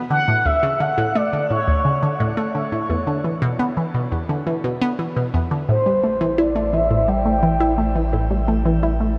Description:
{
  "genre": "ambient, sequencer-driven space music",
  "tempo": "86 BPM",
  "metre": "4/4",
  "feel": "straight",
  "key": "unclear",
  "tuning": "A4 = 442 Hz",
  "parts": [
    { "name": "expressive synth lead", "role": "melody", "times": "0.1-8.1 s", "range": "C5 to G5", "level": "-24 LUFS", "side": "equal", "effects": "lush chorus, vintage 12-bit sampler grit, shimmer reverb, tape echo" },
    { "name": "resonant blip pluck", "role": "riff", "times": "0.1-9.1 s", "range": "D2 to E4", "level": "-22 LUFS", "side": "equal", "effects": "phaser, shimmer reverb, tape echo" },
    { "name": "warm sub bass", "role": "bass", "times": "5.7-9.2 s", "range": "A1", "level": "-25 LUFS", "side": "equal", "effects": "none" }
  ],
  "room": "wet huge ambient reverb, RT60 8.7 s",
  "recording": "none",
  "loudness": "-20 LUFS",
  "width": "mono",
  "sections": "0.0-5.7 A section; 5.7-9.2 B section",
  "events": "none",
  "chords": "0.1 D5; 2.9 E5; 5.7 Am7"
}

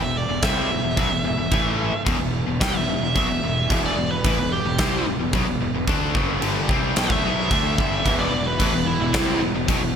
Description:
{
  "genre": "hard rock",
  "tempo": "110 BPM",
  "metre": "4/4",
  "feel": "straight",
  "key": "E minor",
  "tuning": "A4 = 440 Hz",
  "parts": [
    { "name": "high-gain lead guitar", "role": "melody", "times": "0.0-9.4 s", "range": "E4 to G5", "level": "-26 LUFS", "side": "right 2 dB", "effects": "distortion" },
    { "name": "distorted electric guitar", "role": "riff", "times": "0.0-9.9 s", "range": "E2 to D4", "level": "-26 LUFS", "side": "left 11 dB", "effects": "overdrive" },
    { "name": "distorted electric guitar", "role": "riff", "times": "0.0-9.9 s", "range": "E2 to D4", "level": "-29 LUFS", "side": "right 9 dB", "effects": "distortion" },
    { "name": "fuzz fingered electric bass", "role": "bass", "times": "0.0-9.9 s", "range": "E1 to D2", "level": "-27 LUFS", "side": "equal", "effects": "overdrive" },
    { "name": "huge arena drum kit", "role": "drums", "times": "0.4-9.8 s", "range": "crash cymbal, kick drum, snare drum", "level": "-24 LUFS", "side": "right 1 dB", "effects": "gated reverb" },
    { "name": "high-gain distorted guitar", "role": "riff", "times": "8.0-9.9 s", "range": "E2 to C4", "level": "-30 LUFS", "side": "left 1 dB", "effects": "none" },
    { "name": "overdriven tonewheel organ", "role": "sustained chords", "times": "8.1-10.0 s", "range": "E3 to B3", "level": "-35 LUFS", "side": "right 1 dB", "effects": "none" }
  ],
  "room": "light reverb, small room ambience",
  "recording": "bright 1980s-style digital production",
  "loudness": "-19 LUFS",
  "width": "side -8 dB against mid",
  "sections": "0.0-10.0 A section",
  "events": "lead electric guitar solo 0.0-10.0",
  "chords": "0.0 Em"
}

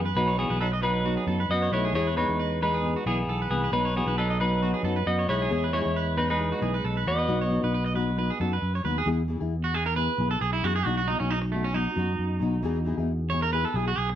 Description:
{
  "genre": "highlife",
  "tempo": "135 BPM",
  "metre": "4/4",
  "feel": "swing 54% on 16ths",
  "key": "E major",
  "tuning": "A4 = 435 Hz",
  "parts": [
    { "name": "breathy trombone", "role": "second line", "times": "0.0-8.6 s", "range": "E3 to B3", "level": "-33 LUFS", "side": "right 3 dB", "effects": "none" },
    { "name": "nylon-string guitar", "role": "accompaniment", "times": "0.0-13.9 s", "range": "E3 to G#4", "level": "-32 LUFS", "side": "left 6 dB", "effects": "none" },
    { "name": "electric guitar at the edge of break-up", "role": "arpeggios", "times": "0.0-14.1 s", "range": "A3 to D#5", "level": "-30 LUFS", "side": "right 4 dB", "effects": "slapback echo" },
    { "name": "fingered electric bass", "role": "bass", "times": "0.0-14.2 s", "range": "B1 to F#2", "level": "-28 LUFS", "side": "equal", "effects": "none" },
    { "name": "clean electric guitar", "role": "melody", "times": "0.2-8.6 s", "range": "B3 to D#5", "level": "-28 LUFS", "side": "left 1 dB", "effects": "spring reverb" },
    { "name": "glass harmonica", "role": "sustained chords", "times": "9.1-14.2 s", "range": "B3 to G#4", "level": "-37 LUFS", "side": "left 1 dB", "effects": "none" }
  ],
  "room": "light reverb",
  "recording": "none",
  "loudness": "-24 LUFS",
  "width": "side -11 dB against mid",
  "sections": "0.0-9.1 A section; 9.1-14.2 B section",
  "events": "clean electric guitar solo 9.1-14.2",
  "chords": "0.0 B; 1.9 E; 3.7 B; 9.1 E; 10.9 B; 12.6 E"
}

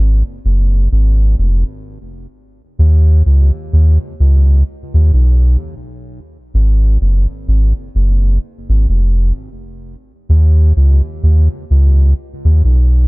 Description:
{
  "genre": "reggae",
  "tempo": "64 BPM",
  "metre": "4/4",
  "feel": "swing 59% on 16ths",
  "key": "unclear",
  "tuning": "A4 = 440 Hz",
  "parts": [
    { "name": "soft dub sub bass", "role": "solo", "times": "0.0-13.1 s", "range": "F1 to D#2", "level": "-10 LUFS", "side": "equal", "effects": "none" }
  ],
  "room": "little or no reverb",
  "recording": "echo-heavy mix",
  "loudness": "-10 LUFS",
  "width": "side -27 dB against mid",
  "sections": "0.0-13.1 A section",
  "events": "none",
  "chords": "none"
}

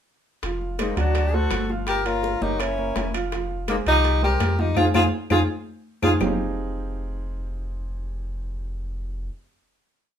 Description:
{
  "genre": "Afro-Cuban jazz",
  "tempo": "166 BPM",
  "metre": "4/4",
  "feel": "straight",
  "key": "F minor",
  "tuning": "A4 = 441 Hz",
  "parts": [
    { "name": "warm baby grand piano", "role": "accompaniment", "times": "0.4-9.3 s", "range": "F3 to Gb5", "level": "-29 LUFS", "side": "right 2 dB", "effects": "none" },
    { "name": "soft dub sub bass", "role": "bass", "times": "0.4-9.3 s", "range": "F1 to F2", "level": "-26 LUFS", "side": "equal", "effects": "none" },
    { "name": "bongos", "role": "percussion", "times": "0.4-6.3 s", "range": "none", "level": "-34 LUFS", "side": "left 5 dB", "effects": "none" },
    { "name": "congas", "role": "percussion", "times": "0.4-6.3 s", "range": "none", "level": "-31 LUFS", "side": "left 2 dB", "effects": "none" },
    { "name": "timbales", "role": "percussion", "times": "0.4-6.3 s", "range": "none", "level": "-29 LUFS", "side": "right 4 dB", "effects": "none" },
    { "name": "warm tenor saxophone", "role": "melody", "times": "0.8-6.1 s", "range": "Bb3 to G4", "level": "-24 LUFS", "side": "left 1 dB", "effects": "none" },
    { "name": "breathy bright jazz flute", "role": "second line", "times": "0.8-6.1 s", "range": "Eb4 to Bb4", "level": "-30 LUFS", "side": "left 2 dB", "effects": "none" },
    { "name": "claves", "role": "percussion", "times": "0.8-6.3 s", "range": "none", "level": "-37 LUFS", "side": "left 7 dB", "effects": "none" }
  ],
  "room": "moderate studio reverb, RT60 0.7 s",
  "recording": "minimal, uncompressed stereo recording",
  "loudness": "-21 LUFS",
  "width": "side -9 dB against mid",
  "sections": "0.4-6.2 A section; 6.2-9.1 final chord",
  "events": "drum fill 4.8-6.2; band accent 4.8-6.2",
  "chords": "0.4 Fm; 1.2 D7; 1.9 Gm7b5; 2.6 Gb7; 3.3 Fmadd9; 6.2 Fm9"
}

